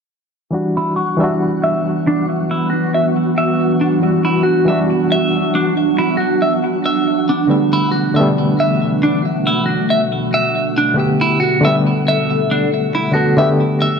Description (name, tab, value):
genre	trip hop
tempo	69 BPM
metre	4/4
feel	swing 57% on 16ths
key	E minor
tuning	A4 = 440 Hz
part	barky reed electric piano	accompaniment	0.5-14.0 s	D3 to A4	-18 LUFS	left 1 dB	overdrive, tremolo, low-pass filter, tape echo
part	warbly tape-like pad	sustained chords	1.5-14.0 s	B2 to A4	-18 LUFS	right 2 dB	chorus, built-in reverb
part	flickering grainy texture	texture	1.0-14.0 s	F#3 to F#5	-26 LUFS	equal	built-in reverb
part	clean electric guitar	arpeggios	0.8-14.0 s	D4 to E5	-18 LUFS	right 1 dB	phaser, low-pass filter, tape echo
room	moderate echo chamber reverb, RT60 1.5 s, digital ambience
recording	none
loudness	-13 LUFS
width	side -6 dB against mid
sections	0.5-14.0 A section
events	filter sweep on reed electric piano 0.5-14.0; filter sweep on clean electric guitar 0.5-14.0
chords	0.5 Em9; 7.5 A9sus4